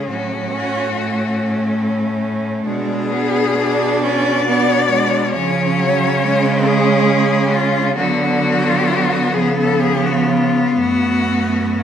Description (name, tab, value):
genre	classical, lyrical piece for cello ensemble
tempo	40-47 BPM (dotted quarters)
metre	6/8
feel	rubato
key	F# minor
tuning	A4 = 440 Hz
part	rich cello	melody	0.0-11.8 s	E#4 to D5	-20 LUFS	left 5 dB	none
part	rich cello	second line	0.0-11.8 s	E#3 to D4	-20 LUFS	right 5 dB	none
part	rich cello	accompaniment	0.0-11.8 s	B3 to D4	-20 LUFS	left 2 dB	none
part	rich cello	bass	0.0-11.8 s	F#2 to D3	-21 LUFS	right 1 dB	none
room	wet scoring stage reverb, RT60 1.9 s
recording	none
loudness	-14 LUFS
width	side -9 dB against mid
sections	0.0-11.8 A section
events	none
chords	0.1 F#m/A; 2.7 G#dim/B; 5.3 C#5; 8.0 D6; 9.3 C#7; 10.8 F#m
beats	| 0.10 1.38 | 2.66 4.03 | 5.33 6.64 | 7.97 9.34 | 10.77